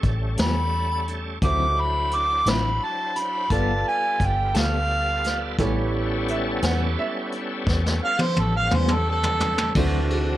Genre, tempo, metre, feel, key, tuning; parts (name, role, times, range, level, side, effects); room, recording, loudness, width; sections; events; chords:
slow blues; 58 BPM (dotted quarters); 12/8; straight; A4 = 438 Hz
clear upright piano; second line; 0.0-7.8 s; A4 to F#5; -32 LUFS; right 4 dB; plate reverb
clear baby grand piano; accompaniment; 0.0-10.4 s; C#4 to G5; -32 LUFS; right 5 dB; plate reverb
bright tonewheel organ; sustained chords; 0.0-10.4 s; Eb3 to C5; -31 LUFS; left 1 dB; slow rotary speaker, overdrive, chorus vibrato
vintage muted fingered electric bass; bass; 0.0-10.4 s; G1 to E2; -25 LUFS; equal
vintage brush drum kit; drums; 0.0-10.3 s; crash cymbal, hi-hat, kick drum, ride cymbal, snare drum, toms; -26 LUFS; equal
warm harmonica; melody; 0.4-9.8 s; A4 to D6; -23 LUFS; right 1 dB; overdrive
electric guitar at the edge of break-up; accompaniment; 0.4-10.0 s; A2 to A4; -30 LUFS; left 3 dB; tremolo, plate reverb
warm horn section; sustained chords; 9.7-10.4 s; E3 to F#4; -32 LUFS; left 2 dB
light reverb; -20 LUFS; side -14 dB against mid
0.0-9.8 A section
drum fill 7.7-9.8
0.0 A9; 1.4 D9; 3.5 G9; 5.6 A9; 9.8 D9